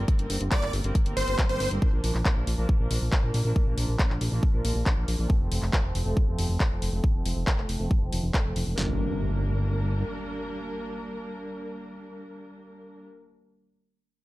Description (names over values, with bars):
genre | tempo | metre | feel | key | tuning
uplifting trance | 138 BPM | 4/4 | straight | G minor | A4 = 435 Hz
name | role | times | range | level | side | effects
muted studio string section | sustained chords | 0.0-13.0 s | F3 to Bb4 | -34 LUFS | right 1 dB | sidechain pumping, low-pass filter
fat analog bass | bass | 0.0-10.0 s | F1 to Bb1 | -27 LUFS | equal | sidechain pumping
house drum kit | drums | 0.1-8.9 s | kick drum, snare drum | -24 LUFS | equal | none
house drum kit | drums | 0.1-8.6 s | handclaps, hi-hat | -32 LUFS | left 1 dB | none
big supersaw lead | melody | 0.5-1.7 s | C5 to D5 | -31 LUFS | equal | sidechain pumping, tape echo
impact | sound effects | 8.8-13.2 s | none | -34 LUFS | equal | none
room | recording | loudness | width
digital ambience | none | -24 LUFS | side -18 dB against mid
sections
0.0-8.8 A section; 8.8-12.3 B section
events
filter sweep on analog synth bass 0.0-8.8; filter sweep on string section 0.0-8.8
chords
0.0 Gm; 1.8 Bb; 5.3 F; 8.8 Gm